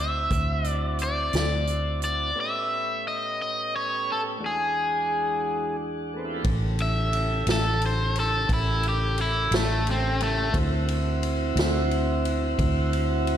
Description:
slow blues; 59 BPM (dotted quarters); 12/8; straight; A mixolydian; A4 = 440 Hz
cranked stack guitar; melody; 0.0-10.5 s; A3 to E5; -26 LUFS; left 1 dB; overdrive, spring reverb
tonewheel organ; sustained chords; 0.0-13.4 s; E2 to D5; -31 LUFS; right 2 dB; slow rotary speaker
vintage muted fingered electric bass; bass; 0.0-13.4 s; A1 to D2; -26 LUFS; equal
vintage drum kit; drums; 0.3-13.4 s; hi-hat, kick drum, ride cymbal, snare drum; -29 LUFS; equal
moderate recital hall reverb, RT60 1.5 s, small room reverb; big arena sound; -23 LUFS; side -10 dB against mid
0.0-6.4 A section; 6.4-13.4 B section
overdriven electric guitar solo 6.4-13.4
0.0 D9; 2.4 A9; 4.4 E9; 6.4 A7; 10.5 D9

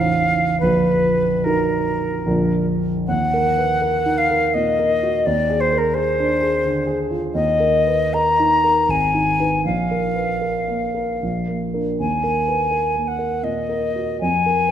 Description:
classical, romantic duo for flute and grand piano; 70-88 BPM; 3/4; rubato; Eb minor; A4 = 440 Hz
silver concert flute; melody; 0.0-14.7 s; Bb4 to Bb5; -19 LUFS; left 1 dB
dark concert grand piano; accompaniment; 0.0-14.7 s; A0 to C5; -20 LUFS; right 1 dB
moderate scoring stage reverb, RT60 2.1 s; -17 LUFS; side -9 dB against mid
0.0-3.1 A section; 3.1-14.7 B section
0.0 F7/A; 0.6 Ebm/Bb; 2.3 Bb; 3.1 Ebm; 5.3 D(b5, no3)/Eb; 7.3 Eb5; 8.9 Abm; 9.6 Bb5; 11.2 Bb; 12.0 Eb5; 14.2 Bb7(no3)/F

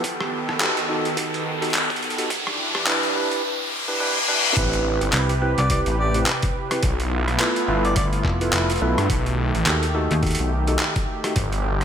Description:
glitch hop; 106 BPM; 4/4; swing 58% on 16ths; A minor; A4 = 440 Hz
warm analog pad; sustained chords; 0.0-11.8 s; C3 to B4; -28 LUFS; right 1 dB; chorus, sidechain pumping
boom bap sampler-style drum kit; drums; 0.0-11.8 s; handclaps, hi-hat, rim click; -25 LUFS; equal; overdrive, studio reverb
electronic kick drum; drums; 0.0-11.5 s; -25 LUFS; equal; overdrive, high-pass filter on kick, studio reverb
riser and reverse cymbal; sound effects; 0.0-4.6 s; -24 LUFS; left 2 dB
tine electric piano; stabs; 0.6-11.3 s; C4 to B4; -27 LUFS; right 1 dB; sidechain pumping, tape echo
phased detuned saw bass; bass; 4.6-11.8 s; G1 to G2; -23 LUFS; equal; phaser
slap-like FM bass; bass; 5.1-10.4 s; F1 to D#2; -22 LUFS; equal
warm harmonica; melody; 5.6-8.1 s; D5; -29 LUFS; equal; tape echo
moderate plate reverb, RT60 1.9 s, digital ambience; dreamy mix soaked in reverb, high-pass filter; -19 LUFS; side -8 dB against mid
0.0-4.6 A section; 4.6-11.8 B section
build-up 0.0-4.6; riser 0.0-4.6; filter sweep 0.0-4.6; reverse cymbal 3.4-4.6; drop 4.6-11.8
0.0 B7b13; 2.3 Em7; 4.6 Am9; 6.8 G13; 9.1 B7b13

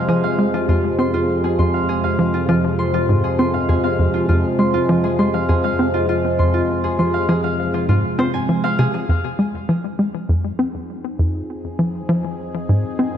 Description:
ambient, sequencer-driven space music; 100 BPM; 4/4; straight; F minor; A4 = 440 Hz
sweeping resonant pad; sustained chords; 0.0-13.2 s; C3 to Ab4; -22 LUFS; equal; chorus, phaser
concert harp; arpeggios; 0.0-11.2 s; F4 to C6; -23 LUFS; right 1 dB; auto-pan, ping-pong delay
analog drone; bass; 0.4-13.2 s; F2; -28 LUFS; equal; chorus
tight sequencer bass; riff; 0.1-13.1 s; F2 to C4; -19 LUFS; equal; wide subtle chorus, cassette tape, ping-pong delay
wet lush hall reverb, RT60 2.8 s; cassette tape; -16 LUFS; side -9 dB against mid
0.0-9.1 A section; 9.1-13.2 B section
fade-in on synth drone 9.1-13.2
0.0 Fm7

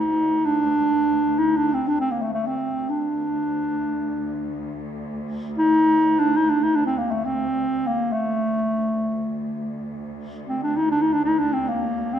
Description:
Arabic maqam ensemble; free time; D maqam hijaz; A4 = 442 Hz
dark clarinet; melody; 0.0-12.2 s; A3 to Eb4+28c; -20 LUFS; equal
dark symphonic cello section; drone; 0.0-12.2 s; D2; -32 LUFS; right 1 dB
wet concert hall reverb, RT60 1.8 s; minimal, uncompressed stereo recording; -20 LUFS; side -9 dB against mid
0.0-12.2 A section

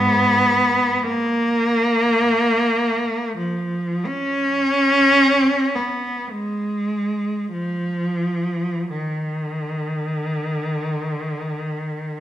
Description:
classical, free, expressive piece for unaccompanied cello; free time; A4 = 440 Hz
rich cello; solo; 0.0-12.2 s; Ab2 to Db4; -18 LUFS; equal
moderate recital hall reverb, RT60 1.6 s; minimal, uncompressed stereo recording; -18 LUFS; side -11 dB against mid
0.0-12.2 A section

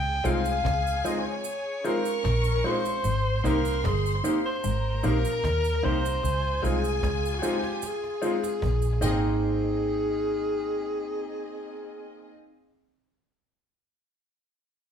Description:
lovers rock reggae; 75 BPM; 4/4; straight; Ab major; A4 = 440 Hz
breathy alto saxophone; melody; 0.0-12.3 s; Gb4 to G5; -29 LUFS; equal
warm studio string section; second line; 0.0-12.3 s; C4 to Db6; -36 LUFS; left 2 dB
semi-hollow electric guitar; riff; 0.0-8.9 s; G2 to Eb3; -38 LUFS; left 4 dB
vintage muted fingered electric bass; bass; 0.0-12.3 s; G1 to Eb2; -28 LUFS; equal
cajon; drums; 0.1-9.2 s; -37 LUFS; right 1 dB; dub echo
warm grand piano; accompaniment; 0.2-12.3 s; Ab3 to G5; -33 LUFS; left 3 dB
mellow electric guitar; stabs; 0.2-12.6 s; Eb4 to C5; -31 LUFS; right 2 dB
cabasa; percussion; 0.2-9.8 s; -40 LUFS; right 5 dB
wet large studio reverb, RT60 1.1 s; band playing live in one room; -24 LUFS; side -8 dB against mid
0.0-9.4 A section; 9.4-12.6 B section
drum fill 7.8-9.4
0.0 Dbmaj7; 3.0 Abmaj7; 6.2 Dbmaj7; 9.0 Abmaj7

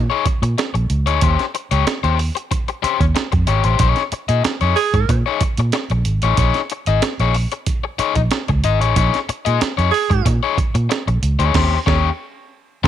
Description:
funk; 93 BPM; 4/4; straight; Bb dorian; A4 = 442 Hz
breathy tenor saxophone; second line; 0.0, 4.8-5.2, 9.9-10.3 s; Ab4; -19 LUFS; right 10 dB
vintage muted fingered electric bass; bass; 0.0-12.9 s; Ab1 to Bb2; -17 LUFS; right 1 dB
overdriven electric guitar; accompaniment; 0.1-12.9 s; Db4 to Eb5; -20 LUFS; left 11 dB
breakbeat sampler-style drum kit; drums; 0.3-12.9 s; crash cymbal, hi-hat, kick drum, snare drum; -21 LUFS; right 3 dB
little or no reverb; 1960s-style stereo with parts hard left and right; -15 LUFS; side -10 dB against mid
0.0-12.9 A section
band accent 11.5-12.9
0.0 Bbm7; 1.2 Eb13; 3.8 Bbm7; 11.5 Eb6

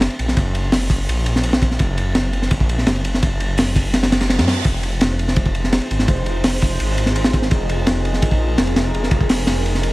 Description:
drum and bass, jungle; 168 BPM; 4/4; straight; F phrygian; A4 = 440 Hz
detuned saw bass; bass; 0.0-9.9 s; F1 to Gb2; -20 LUFS; equal
crunchy breakbeat drum kit; drums; 0.0-9.9 s; hi-hat, kick drum, ride cymbal, snare drum; -18 LUFS; equal
reverse cymbal; sound effects; 4.1-4.7 s; -30 LUFS; right 4 dB
warbly tape-like pad; sustained chords; 5.2-9.9 s; Eb4 to C5; -26 LUFS; right 1 dB; chorus, built-in reverb
small room ambience; vinyl crackle; -16 LUFS; side -19 dB against mid
0.0-9.9 A section
reverse cymbal 4.1-4.7
0.0 Gb; 4.7 Fm7

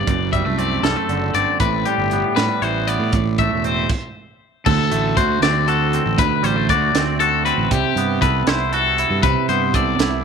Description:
math rock and midwest emo; 79 BPM (dotted quarters); 6/8; straight; A4 = 440 Hz
twangy electric guitar; accompaniment; 0.0-10.2 s; D2 to A4; -21 LUFS; right 12 dB
twangy electric guitar; arpeggios; 0.0-10.2 s; G4 to E5; -20 LUFS; left 12 dB; spring reverb
fuzz fingered electric bass; bass; 0.0-10.2 s; E1 to A2; -23 LUFS; equal; overdrive, tube saturation
crisp fusion drum kit; drums; 0.1-10.1 s; crash cymbal, hi-hat, kick drum, snare drum; -23 LUFS; right 3 dB
light reverb; 1960s-style stereo with parts hard left and right; -16 LUFS; side -6 dB against mid
0.0-4.7 A section; 4.7-10.2 B section
stop 3.9-4.7
0.1 D7/F#; 1.6 Am9; 3.1 Amadd11/E; 4.7 D7; 7.7 Cmaj7

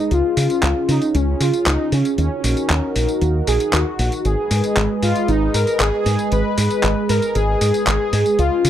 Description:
italo disco; 116 BPM; 4/4; straight; G# dorian; A4 = 439 Hz
analog synth brass; melody; 0.0-8.7 s; C#4 to B4; -20 LUFS; equal; chorus, tremolo, tape echo
warm analog pad; sustained chords; 0.0-8.7 s; G#3 to D#5; -23 LUFS; right 1 dB; chorus
fingered electric bass with an envelope filter; bass; 0.1-8.7 s; G#1 to C#3; -20 LUFS; equal
clean 12-bit digital drum machine; drums; 0.1-8.7 s; handclaps, hi-hat, tambourine; -23 LUFS; equal
little or no reverb; dry, close 1970s-style studio recording; -16 LUFS; side -10 dB against mid
0.0-8.7 A section
filter sweep on analog synth pad 0.0-8.7
0.1 C#; 2.2 D#m; 4.2 G#m

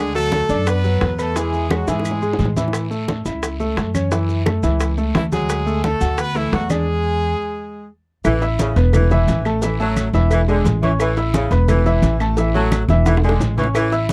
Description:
latin, salsa; 174 BPM; 4/4; straight; A major; A4 = 440 Hz
brilliant horn section; melody; 0.0-2.5, 5.2-7.9 s; E3 to B4; -25 LUFS; equal
clear grand piano; accompaniment; 0.0-14.1 s; E3 to E6; -24 LUFS; equal
upright bass; bass; 0.0-14.1 s; E1 to A2; -22 LUFS; equal
congas; percussion; 0.1-14.1 s; -26 LUFS; equal
maracas; percussion; 0.1-14.1 s; -40 LUFS; equal
bongos and cowbell; percussion; 0.3-14.1 s; -29 LUFS; equal
guiro; percussion; 0.3-14.1 s; -41 LUFS; equal
claves; percussion; 0.7-13.9 s; -34 LUFS; equal
clear saxophone section; second line; 8.3-14.1 s; C#3 to F#3; -24 LUFS; equal
light reverb; dry, close 1970s-style studio recording; -18 LUFS; mono
0.0-8.2 A section; 8.2-14.1 B section
drum fill 1.9-2.7, 12.7-13.8; stop 6.9-8.2
0.0 Bm7/D; 1.4 Eadd9; 2.7 A; 4.1 F#m7; 5.5 D6; 6.9 E; 8.2 A; 9.6 A5; 10.3 E7; 11.0 A; 11.7 E5; 12.4 A5; 13.1 E7

